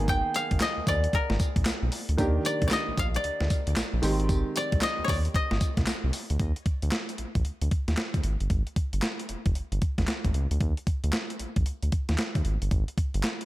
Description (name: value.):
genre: R&B, new jack swing.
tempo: 114 BPM.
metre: 4/4.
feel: swing 63% on 16ths.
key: Eb major.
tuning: A4 = 439 Hz.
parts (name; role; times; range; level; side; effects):
koto; melody; 0.0-6.9 s; Bb4 to G5; -30 LUFS; left 2 dB; digital delay.
warm baby grand piano; accompaniment; 0.0-6.4 s; Eb3 to Ab4; -33 LUFS; right 2 dB; none.
round analog bass; bass; 0.0-13.2 s; F1 to Eb2; -28 LUFS; equal; none.
crisp 8-bit digital drum machine; drums; 0.1-13.4 s; handclaps, hi-hat, kick drum, snare drum, tambourine; -28 LUFS; equal; gated reverb.
room: digital ambience.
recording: none.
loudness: -25 LUFS.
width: side -16 dB against mid.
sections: 0.0-6.4 A section; 6.4-13.4 B section.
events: none.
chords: 0.0 Abmadd9; 2.2 Ebmaj7; 4.0 Abmaj7; 6.4 Eb5; 8.2 Fmadd9; 10.6 Eb5; 12.4 Fmadd9 (rootless).